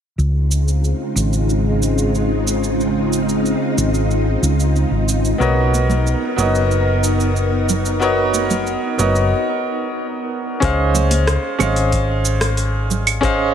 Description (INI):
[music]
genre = sunset chillout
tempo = 92 BPM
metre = 4/4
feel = straight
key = Db major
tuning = A4 = 444 Hz
[part]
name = soft string machine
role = sustained chords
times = 0.4-10.6 s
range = Db3 to Bb4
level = -20 LUFS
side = equal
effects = ensemble chorus
[part]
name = hollow-body short-scale fingered electric bass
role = bass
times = 0.2-13.5 s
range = Gb1 to Db2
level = -18 LUFS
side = equal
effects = none
[part]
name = smooth R&B drum kit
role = drums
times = 0.2-13.4 s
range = cabasa, claves, hi-hat, rim click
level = -23 LUFS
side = right 3 dB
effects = none
[part]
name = clear baby grand piano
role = accompaniment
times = 5.4-13.5 s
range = Cb4 to F5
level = -19 LUFS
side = equal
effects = auto-pan, low-pass filter, ping-pong delay
[part]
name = congas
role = percussion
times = 5.7-13.0 s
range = none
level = -26 LUFS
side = right 4 dB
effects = none
[part]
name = electronic kick drum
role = drums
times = 10.6-13.4 s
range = none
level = -22 LUFS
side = equal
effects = none
[sound]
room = light reverb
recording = none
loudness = -15 LUFS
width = side -8 dB against mid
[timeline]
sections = 0.2-10.6 A section; 10.6-13.5 B section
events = break 9.3-10.6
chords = 0.2 Dbmaj9; 5.4 Cbmaj9; 10.6 Dbmaj9